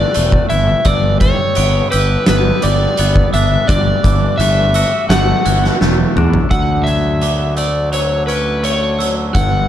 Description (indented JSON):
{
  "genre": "post-rock",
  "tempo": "85 BPM",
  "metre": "4/4",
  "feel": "straight",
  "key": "unclear",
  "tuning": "A4 = 440 Hz",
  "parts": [
    { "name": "overdriven slide guitar", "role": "melody", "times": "0.0-9.7 s", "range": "B4 to F#5", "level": "-18 LUFS", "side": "left 2 dB", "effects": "slapback echo" },
    { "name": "glockenspiel with hard plastic mallets", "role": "arpeggios", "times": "0.0-9.7 s", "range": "D6 to D7", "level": "-26 LUFS", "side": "right 10 dB", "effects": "slapback echo" },
    { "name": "twangy electric guitar", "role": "arpeggios", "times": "0.0-9.7 s", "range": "G2 to G4", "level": "-24 LUFS", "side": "left 2 dB", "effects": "slapback echo" },
    { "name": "fuzz fingered electric bass", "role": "bass", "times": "0.0-9.7 s", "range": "E1 to E2", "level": "-16 LUFS", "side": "equal", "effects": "overdrive" },
    { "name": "oversized low-tuned drum kit", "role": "drums", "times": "0.1-9.5 s", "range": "hi-hat, kick drum, snare drum, toms", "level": "-17 LUFS", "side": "right 1 dB", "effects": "none" }
  ],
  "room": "small room reverb",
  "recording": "dark, warm production",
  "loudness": "-12 LUFS",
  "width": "side -11 dB against mid",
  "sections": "0.0-6.5 A section; 6.5-9.7 B section",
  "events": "drum fill 5.8-6.5",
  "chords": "0.0 Dadd9; 0.9 G; 3.7 Dadd9/G; 6.5 Dmaj7"
}